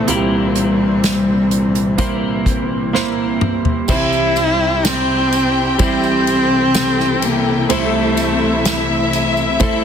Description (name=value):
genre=pop ballad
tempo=63 BPM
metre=4/4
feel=straight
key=unclear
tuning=A4 = 442 Hz
part: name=dark cello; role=melody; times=0.0-9.1 s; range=G3 to E4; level=-17 LUFS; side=equal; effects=none
part: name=warm grand piano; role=accompaniment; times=0.0-9.8 s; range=C2 to C5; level=-21 LUFS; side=right 5 dB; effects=none
part: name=warm studio string section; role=sustained chords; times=0.0-9.8 s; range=Bb2 to A4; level=-24 LUFS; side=left 2 dB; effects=none
part: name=twelve-string electric guitar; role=arpeggios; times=0.0-9.8 s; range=C3 to C5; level=-24 LUFS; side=left 8 dB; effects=lush chorus, digital delay
part: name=unplugged drum kit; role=drums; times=0.1-9.8 s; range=crash cymbal, hi-hat, kick drum, ride cymbal, snare drum, toms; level=-21 LUFS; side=left 1 dB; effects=soft clipping on snare
part: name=warm studio violin section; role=second line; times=3.9-9.8 s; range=E4 to G5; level=-21 LUFS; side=left 3 dB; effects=none
part: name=tambourine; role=percussion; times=3.9-9.8 s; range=none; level=-30 LUFS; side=right 9 dB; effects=none
room=light reverb, small room ambience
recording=dense, heavily limited modern master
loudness=-14 LUFS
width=side -8 dB against mid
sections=0.0-3.9 A section; 3.9-9.8 B section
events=drum fill 2.9-3.9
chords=0.0 C7; 3.9 C